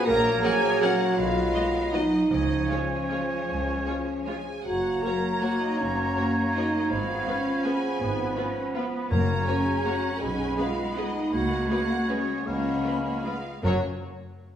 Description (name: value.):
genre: classical, orchestral ballroom waltz.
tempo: 145-175 BPM.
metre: 3/4.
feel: rubato.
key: F# major.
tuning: A4 = 437 Hz.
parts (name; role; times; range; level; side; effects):
bright silver concert flute; second line; 0.0-13.8 s; C#5 to B5; -34 LUFS; left 2 dB; none.
dark clarinet; second line; 0.0-13.8 s; C#4 to A#4; -33 LUFS; right 1 dB; none.
rich chamber violin section; second line; 0.0-13.8 s; C#4 to A#5; -36 LUFS; left 1 dB; none.
warm oboe; second line; 0.0-13.8 s; A#4 to F#5; -34 LUFS; right 2 dB; none.
dark bassoon; accompaniment; 0.0-13.8 s; F3 to G#3; -35 LUFS; right 1 dB; none.
bright trombone section; sustained chords; 0.0-13.8 s; C#3 to C#4; -38 LUFS; right 3 dB; none.
warm French horn section; sustained chords; 0.0-13.8 s; C#4 to A#4; -30 LUFS; left 1 dB; none.
rich symphonic cello section; bass; 0.0-13.8 s; F#2 to C#4; -31 LUFS; right 1 dB; none.
rich chamber double bass section; bass; 0.1-13.8 s; F#1 to C#2; -34 LUFS; right 1 dB; none.
rich chamber violin section; melody; 0.4-13.8 s; Cb5 to F#5; -39 LUFS; left 4 dB; none.
rich chamber viola section; accompaniment; 0.4-13.8 s; F#3 to A#4; -37 LUFS; equal; none.
timpani; percussion; 2.3-2.9, 9.1-9.6, 13.6-13.8 s; F#2 to C#3; -31 LUFS; left 2 dB; none.
room: wet scoring stage reverb, RT60 1.6 s.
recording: small room ambience.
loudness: -23 LUFS.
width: side -9 dB against mid.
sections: 0.0-13.6 A section.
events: none.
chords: 0.1 F#/A#; 1.2 B; 2.3 C#; 4.7 F#; 6.9 Fdim/Ab; 9.1 F#; 10.2 G#m/B; 11.3 C#7sus4; 12.5 C#7; 13.6 F#.